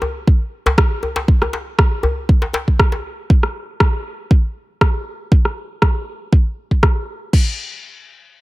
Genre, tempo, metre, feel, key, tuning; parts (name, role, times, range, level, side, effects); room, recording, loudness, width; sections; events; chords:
afro house; 119 BPM; 4/4; swing 54% on 16ths
djembe; percussion; 0.0-3.0 s; -20 LUFS; left 1 dB
electronic kick drum; drums; 0.3-7.4 s; -13 LUFS; equal
deep house drum kit; drums; 0.8-7.4 s; crash cymbal, rim click; -21 LUFS; equal; low-pass filter on snare, low-pass filter on cymbals
studio reverb; -15 LUFS; side -20 dB against mid
0.0-7.3 A section; 7.3-8.4 B section